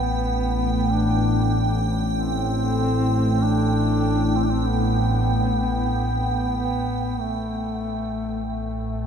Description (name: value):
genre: dark ambient drone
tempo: 48 BPM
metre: 4/4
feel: straight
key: A minor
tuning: A4 = 440 Hz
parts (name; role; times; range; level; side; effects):
- mellow duduk; melody; 0.0-9.1 s; A3 to D4; -26 LUFS; left 1 dB; ping-pong delay
- analog drone; drone; 0.0-9.1 s; A1 to A2; -22 LUFS; equal; chorus
- icy glass pad; texture; 0.0-7.2 s; G5; -29 LUFS; right 4 dB; chorus, built-in reverb
room: wet huge ambient reverb, RT60 8.6 s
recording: in a vast, echoing space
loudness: -20 LUFS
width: side -7 dB against mid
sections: 0.0-7.2 A section; 7.2-9.1 B section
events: none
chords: 0.0 Am; 7.2 N.C.